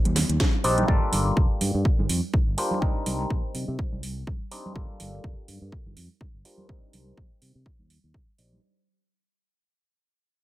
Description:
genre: filtered disco house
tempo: 124 BPM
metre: 4/4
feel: swing 56% on 16ths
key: unclear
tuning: A4 = 440 Hz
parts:
  - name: auto-wah clav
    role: accompaniment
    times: 0.0-8.6 s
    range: G3 to D5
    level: -29 LUFS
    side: left 1 dB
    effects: phaser, vintage 12-bit sampler grit, sidechain pumping, low-pass filter
  - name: fingered electric bass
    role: bass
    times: 0.1-8.6 s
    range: F1 to C3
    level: -28 LUFS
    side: equal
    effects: sidechain pumping, low-pass filter
  - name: house drum kit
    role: drums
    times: 0.1-8.5 s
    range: hi-hat, snare drum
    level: -30 LUFS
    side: right 2 dB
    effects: sidechain pumping on hats
  - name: congas and maracas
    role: percussion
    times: 0.1-8.6 s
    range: none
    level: -34 LUFS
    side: right 2 dB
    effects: sidechain pumping on perc, low-pass filter on perc
  - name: electronic kick drum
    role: drums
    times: 0.4-8.3 s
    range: none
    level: -24 LUFS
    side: equal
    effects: none
room: light reverb, digital ambience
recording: none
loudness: -22 LUFS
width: side -16 dB against mid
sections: 0.0-8.6 A section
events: fade-out 0.0-8.6; filter sweep 0.0-8.6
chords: 0.0 Cm7; 0.9 Gm9; 2.8 Cm7; 4.8 Gm9; 6.7 Cm7

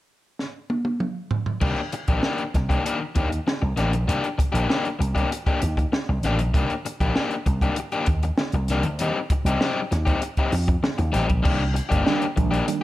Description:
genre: funk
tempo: 98 BPM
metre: 4/4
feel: straight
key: C dorian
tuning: A4 = 442 Hz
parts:
  - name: compact cocktail drum kit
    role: drums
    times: 0.4-12.8 s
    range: crash cymbal, hi-hat, kick drum, snare drum, toms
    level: -24 LUFS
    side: equal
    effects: none
  - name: crunchy overdriven guitar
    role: accompaniment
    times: 1.6-12.7 s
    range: Eb3 to G4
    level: -25 LUFS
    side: left 3 dB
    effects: none
  - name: slap bass with an envelope filter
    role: bass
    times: 1.6-12.6 s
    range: G1 to F2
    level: -24 LUFS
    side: equal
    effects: none
  - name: mellow reed electric piano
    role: stabs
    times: 12.1-12.8 s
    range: Eb3 to D4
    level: -25 LUFS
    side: right 7 dB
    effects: fast tremolo, slapback echo
room: light reverb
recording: none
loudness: -21 LUFS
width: side -16 dB against mid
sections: 0.0-1.6 A section; 1.6-11.5 B section; 11.5-12.8 C section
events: drum fill 0.4-1.6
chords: 0.0 N.C.; 1.6 Cm9; 9.0 Eb6; 11.5 Cm9

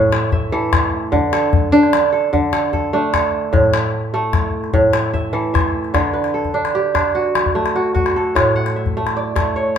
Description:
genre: west african traditional, West African string and xylophone music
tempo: 100 BPM (dotted quarters)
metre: 12/8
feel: straight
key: D major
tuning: A4 = 440 Hz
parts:
  - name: kora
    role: arpeggios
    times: 0.0-9.8 s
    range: A2 to F#5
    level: -16 LUFS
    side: right 2 dB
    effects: none
  - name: calabash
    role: percussion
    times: 0.1-9.8 s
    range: none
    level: -19 LUFS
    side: left 3 dB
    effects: none
room: wet small room reverb, RT60 0.6 s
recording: band playing live in one room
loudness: -15 LUFS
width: side -8 dB against mid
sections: 0.0-5.9 A section; 5.9-9.8 B section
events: none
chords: 0.0 A5; 1.1 D5; 3.5 A5; 5.9 D; 8.4 A

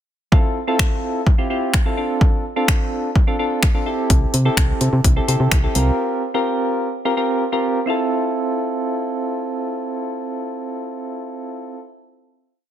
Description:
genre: dance-pop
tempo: 127 BPM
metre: 4/4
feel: straight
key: F major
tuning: A4 = 440 Hz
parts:
  - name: soft electric-piano-like synth keys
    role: accompaniment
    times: 0.3-11.8 s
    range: C4 to Bb4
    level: -21 LUFS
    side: equal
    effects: chorus, tremolo, sidechain pumping
  - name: deep house drum kit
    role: drums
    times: 0.3-5.9 s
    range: finger snaps, hi-hat, kick drum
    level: -16 LUFS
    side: equal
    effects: soft clipping on snare
  - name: solid FM bass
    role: bass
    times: 4.1-5.9 s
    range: C2 to C3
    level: -18 LUFS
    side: equal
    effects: sidechain pumping
room: light reverb, digital ambience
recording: dense, heavily limited modern master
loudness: -17 LUFS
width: side -10 dB against mid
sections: 0.3-7.9 verse; 7.9-11.7 final chord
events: none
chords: 0.3 Fmaj7; 2.0 Dm7; 3.9 Am7/C; 5.8 C7sus4; 7.9 Fmaj7

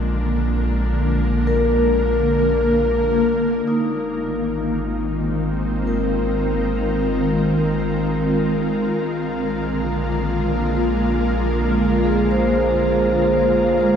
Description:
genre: ambient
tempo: 68 BPM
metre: 3/4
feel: straight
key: Ab lydian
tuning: A4 = 440 Hz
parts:
  - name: ethereal airy pad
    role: sustained chords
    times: 0.0-14.0 s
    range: D3 to Bb4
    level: -20 LUFS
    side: equal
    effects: ensemble chorus, built-in reverb
  - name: warm sub bass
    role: bass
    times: 0.0-14.0 s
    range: Ab1 to Bb1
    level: -25 LUFS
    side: equal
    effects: none
  - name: vibraphone with medium mallets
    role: arpeggios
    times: 1.5-14.0 s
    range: Eb4 to C5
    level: -22 LUFS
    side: equal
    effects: diffuse ambient delay
  - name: glass harmonica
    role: texture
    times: 3.7-14.0 s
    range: F5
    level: -35 LUFS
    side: left 4 dB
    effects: none
room: wet cathedral reverb, RT60 5.4 s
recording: in a vast, echoing space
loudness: -17 LUFS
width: side -8 dB against mid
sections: 0.0-3.7 A section; 3.7-14.0 B section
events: fade-in on glass harmonica 3.7-14.0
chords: 0.0 Bb7; 3.7 Ab69; 9.0 Bb7

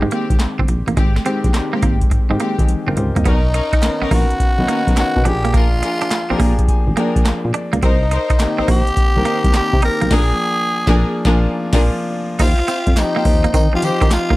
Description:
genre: R&B, new jack swing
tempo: 105 BPM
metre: 4/4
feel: swing 67% on 16ths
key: Eb major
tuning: A4 = 438 Hz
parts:
  - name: clear baby grand piano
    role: accompaniment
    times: 0.0-14.4 s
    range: Eb3 to Bb5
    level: -22 LUFS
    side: left 2 dB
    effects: plate reverb
  - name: semi-hollow electric guitar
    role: riff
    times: 0.0-14.4 s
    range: Ab3 to D#4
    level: -23 LUFS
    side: right 6 dB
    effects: wide subtle chorus
  - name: solid FM bass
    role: bass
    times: 0.0-14.4 s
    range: G1 to Eb3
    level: -19 LUFS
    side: equal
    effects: none
  - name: clear studio string section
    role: stabs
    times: 0.1-14.0 s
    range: Ab3 to C5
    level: -26 LUFS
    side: left 2 dB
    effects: plate reverb
  - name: booming analog drum machine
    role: drums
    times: 0.1-14.4 s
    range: crash cymbal, handclaps, hi-hat, kick drum, snare drum, tambourine, toms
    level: -16 LUFS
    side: equal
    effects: overdrive
  - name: growling tenor saxophone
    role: melody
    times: 3.3-14.4 s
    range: D#4 to Bb4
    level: -20 LUFS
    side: equal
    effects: plate reverb
  - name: group handclap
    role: percussion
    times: 3.8-14.3 s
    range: none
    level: -34 LUFS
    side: right 9 dB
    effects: none
room: light reverb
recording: dark, warm production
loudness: -14 LUFS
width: side -18 dB against mid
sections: 0.0-3.3 A section; 3.3-12.4 B section; 12.4-14.4 C section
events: drum fill 2.7-3.3; grand piano fill 6.1-7.8; band accent 10.1-12.4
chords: 0.0 Abmaj7; 3.3 Bmaj9; 5.3 Bb7; 7.8 Cm7; 10.1 Bb7; 12.4 Eb69

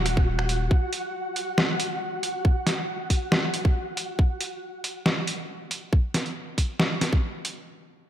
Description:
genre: deep dubstep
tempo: 138 BPM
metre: 4/4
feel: half-time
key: unclear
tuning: A4 = 440 Hz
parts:
  - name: saturated sub bass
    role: bass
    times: 0.0-0.7 s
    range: Eb1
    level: -26 LUFS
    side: equal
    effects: none
  - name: flickering grainy texture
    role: texture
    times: 0.0-4.2 s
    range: Gb4 to Gb5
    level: -32 LUFS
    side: equal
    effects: built-in reverb
  - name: trip hop sampler-style drum kit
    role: drums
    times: 0.1-7.5 s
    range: finger snaps, hi-hat, snare drum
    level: -26 LUFS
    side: equal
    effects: none
  - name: electronic kick drum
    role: drums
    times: 0.2-7.2 s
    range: none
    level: -21 LUFS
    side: equal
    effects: none
room: moderate lush hall reverb, RT60 2.0 s, digital ambience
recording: dreamy mix soaked in reverb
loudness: -24 LUFS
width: side -11 dB against mid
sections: 0.0-7.7 A section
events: none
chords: none

